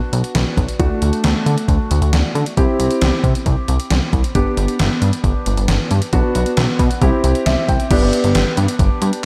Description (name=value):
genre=synth-pop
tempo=135 BPM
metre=4/4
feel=straight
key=unclear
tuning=A4 = 440 Hz
part: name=warm grand piano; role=accompaniment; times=0.0-9.2 s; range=A3 to G5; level=-22 LUFS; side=equal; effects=subtle chorus
part: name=chorused synth bass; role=bass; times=0.1-9.1 s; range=G1 to D3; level=-19 LUFS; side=equal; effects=none
part: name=gated 80s digital drum machine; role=drums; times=0.1-9.2 s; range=crash cymbal, hi-hat, kick drum, snare drum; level=-21 LUFS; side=equal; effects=gated reverb, gated reverb snare, overdrive
room=light reverb, digital ambience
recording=none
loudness=-16 LUFS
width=mono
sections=0.0-7.9 A section; 7.9-9.2 B section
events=grand piano fill 7.2-7.9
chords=0.0 Bm; 0.8 D; 2.6 C; 4.4 G; 6.1 Bm; 7.0 C; 7.9 G